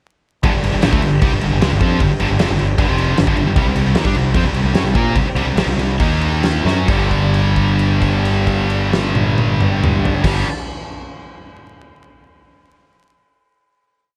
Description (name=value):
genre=hard rock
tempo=132-154 BPM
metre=4/4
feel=straight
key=G minor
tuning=A4 = 438 Hz
part: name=overdriven tonewheel organ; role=sustained chords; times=0.4-10.4 s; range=G3 to F5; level=-30 LUFS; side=equal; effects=chorus vibrato, slow rotary speaker
part: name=scooped high-gain guitar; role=riff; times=0.4-10.5 s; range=F2 to Bb4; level=-23 LUFS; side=equal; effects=distortion
part: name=growling fingered electric bass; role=bass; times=0.4-10.4 s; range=F1 to Bb2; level=-21 LUFS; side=equal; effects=overdrive
part: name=huge arena drum kit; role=drums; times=0.4-10.3 s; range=crash cymbal, kick drum, snare drum, toms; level=-21 LUFS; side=equal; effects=none
part: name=scooped high-gain guitar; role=riff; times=0.5-10.5 s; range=F2 to Bb4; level=-24 LUFS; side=equal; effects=distortion
room=light reverb, small room ambience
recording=vinyl crackle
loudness=-16 LUFS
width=mono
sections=0.4-6.9 riff; 6.9-10.5 final chord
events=slowing down 3.6-6.9; drum fill 6.6; held note 6.9-10.2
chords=0.4 G5; 3.6 C5; 6.0 Eb5; 6.6 C5; 6.9 G5